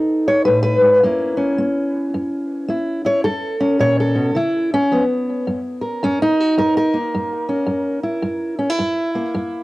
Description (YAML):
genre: acoustic country blues, solo or duo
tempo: 108 BPM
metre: 4/4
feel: swing 63% on 8ths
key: F# mixolydian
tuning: A4 = 443 Hz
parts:
  - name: fingerpicked steel-string acoustic guitar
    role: solo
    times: 0.0-9.6 s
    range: F#2 to C#5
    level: -16 LUFS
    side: equal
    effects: cassette tape
room: moderate studio reverb, RT60 0.5 s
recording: home recording on cassette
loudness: -16 LUFS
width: side -19 dB against mid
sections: 0.0-5.5 A section; 5.5-9.6 B section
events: steel-string acoustic guitar solo 0.0-5.5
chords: 0.0 B7; 1.0 F#7; 4.3 C#7; 5.5 F#7